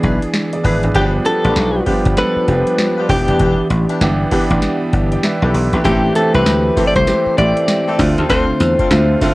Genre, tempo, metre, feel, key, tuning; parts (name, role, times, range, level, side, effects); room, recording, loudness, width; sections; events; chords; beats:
R&B, new jack swing; 98 BPM; 4/4; swing 62% on 16ths; A4 = 440 Hz
clear baby grand piano; accompaniment; 0.0-9.3 s; D3 to G5; -18 LUFS; right 2 dB; cassette tape
warm analog pad; sustained chords; 0.0-9.3 s; D3 to B4; -24 LUFS; left 1 dB
warm horn section; stabs; 0.0-9.3 s; C4 to B4; -24 LUFS; left 2 dB; cassette tape
dry thumbed slap bass; bass; 0.0-9.1 s; E1 to E2; -16 LUFS; equal
booming analog drum machine; drums; 0.0-9.3 s; hi-hat, kick drum, snare drum, tambourine; -21 LUFS; equal; cassette tape
direct-recorded clean electric guitar; melody; 1.0-9.3 s; G4 to D5; -17 LUFS; left 1 dB; cassette tape
little or no reverb; home recording on cassette; -12 LUFS; side -20 dB against mid
0.9-9.3 A section
0.0 E7; 0.9 G7; 3.1 Em7; 5.8 Am7; 8.0 Dm7
0.34 | 0.95 1.56 2.17 2.79 | 3.40 4.01 4.62 5.23 | 5.85 6.46 7.07 7.68 | 8.30 8.91